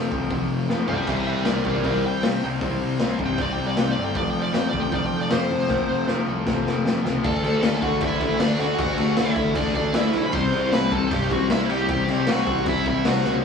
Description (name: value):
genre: punk rock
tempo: 155 BPM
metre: 4/4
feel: straight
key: unclear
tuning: A4 = 440 Hz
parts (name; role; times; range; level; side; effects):
- crunchy overdriven guitar; riff; 0.0-13.4 s; F2 to D4; -24 LUFS; left 3 dB; none
- fuzz picked electric bass; bass; 0.0-13.4 s; F1 to C3; -29 LUFS; equal; overdrive
- raw garage drum kit; drums; 0.1-13.3 s; crash cymbal, hi-hat, kick drum, snare drum, toms; -25 LUFS; left 1 dB; none
- high-gain lead guitar; melody; 0.9-13.3 s; D4 to C6; -26 LUFS; right 1 dB; distortion
room: moderate studio reverb, RT60 0.6 s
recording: rough rehearsal-room recording, studio ambience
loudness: -20 LUFS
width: side -6 dB against mid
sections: 0.0-7.2 A section; 7.2-13.4 B section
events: lead electric guitar solo 0.0-7.2; drum fill 0.7-1.1, 5.7-7.2, 13.3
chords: 0.0 F5; 1.1 C5; 4.2 F5; 7.2 D; 10.3 C